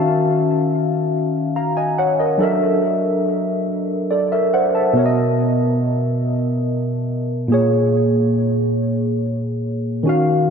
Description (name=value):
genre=R&B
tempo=47 BPM (dotted quarters)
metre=6/8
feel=straight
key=unclear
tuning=A4 = 440 Hz
part: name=barky tine electric piano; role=solo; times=0.0-10.5 s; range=Bb2 to Bb5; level=-16 LUFS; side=equal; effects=overdrive, analog chorus, ping-pong delay
room=wet lush hall reverb, RT60 2.1 s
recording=dreamy mix soaked in reverb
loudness=-16 LUFS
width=side -6 dB against mid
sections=0.0-10.5 A section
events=none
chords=0.0 Ebm9; 2.4 Gb7alt; 5.0 Bmaj7; 7.5 Bbm7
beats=1.12 | 2.40 3.67 | 4.95 6.23 | 7.50 8.78 | 10.06